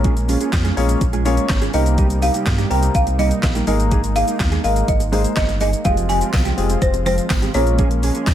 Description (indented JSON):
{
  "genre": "dance-pop",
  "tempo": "124 BPM",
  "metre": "4/4",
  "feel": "straight",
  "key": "Ab major",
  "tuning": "A4 = 440 Hz",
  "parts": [
    { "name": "folk marimba with medium hard mallets", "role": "melody", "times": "0.0-8.3 s", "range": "C5 to Ab5", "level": "-23 LUFS", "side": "equal", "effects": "digital delay" },
    { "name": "warm concert grand piano", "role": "accompaniment", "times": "0.0-8.3 s", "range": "Ab3 to Db5", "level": "-25 LUFS", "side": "left 6 dB", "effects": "sidechain pumping" },
    { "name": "warm analog pad", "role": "sustained chords", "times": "0.0-8.3 s", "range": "C3 to F4", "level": "-27 LUFS", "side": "right 1 dB", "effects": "chorus, sidechain pumping" },
    { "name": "mellow electric guitar", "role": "riff", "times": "0.0-8.3 s", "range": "F3 to Ab4", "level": "-25 LUFS", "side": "right 5 dB", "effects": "ensemble chorus" },
    { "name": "sub bass with octave", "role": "bass", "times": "0.0-8.3 s", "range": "F1 to G2", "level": "-20 LUFS", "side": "equal", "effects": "sidechain pumping" },
    { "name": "pop drum kit", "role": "drums", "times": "0.0-8.3 s", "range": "handclaps, hi-hat, kick drum, shaker, snare drum", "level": "-21 LUFS", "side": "equal", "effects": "overdrive" },
    { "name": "tambourine", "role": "percussion", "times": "6.3-8.3 s", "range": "none", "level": "-37 LUFS", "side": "left 10 dB", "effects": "none" }
  ],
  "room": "digital ambience",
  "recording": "none",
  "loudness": "-15 LUFS",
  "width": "side -11 dB against mid",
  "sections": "0.0-8.3 A section",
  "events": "none",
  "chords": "0.0 Bbm7; 1.7 Cm7; 3.7 Absus2; 5.9 Fmadd9; 7.5 Bbm7"
}